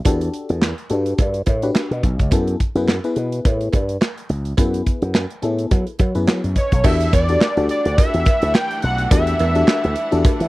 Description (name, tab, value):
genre	early-eighties boogie funk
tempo	106 BPM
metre	4/4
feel	swing 56% on 16ths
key	E dorian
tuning	A4 = 440 Hz
part	cowbell	percussion	0.0-10.4 s	none	-30 LUFS	right 9 dB	none
part	FM electric piano	accompaniment	0.1-10.5 s	B3 to D#5	-23 LUFS	left 3 dB	chorus
part	slap bass with an envelope filter	bass	0.1-10.5 s	B1 to F#3	-20 LUFS	equal	none
part	modern studio drum kit	drums	0.1-10.5 s	crash cymbal, handclaps, hi-hat, kick drum, snare drum	-18 LUFS	equal	none
part	fat analog lead	melody	6.6-10.5 s	C#5 to G5	-20 LUFS	equal	none
part	warm studio string section	sustained chords	6.8-10.5 s	E3 to F#5	-30 LUFS	equal	none
room	little or no reverb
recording	dry, close 1970s-style studio recording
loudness	-16 LUFS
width	side -19 dB against mid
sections	0.0-6.8 A section; 6.8-10.5 B section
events	none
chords	0.0 Em11; 2.3 F#m11; 6.8 Em11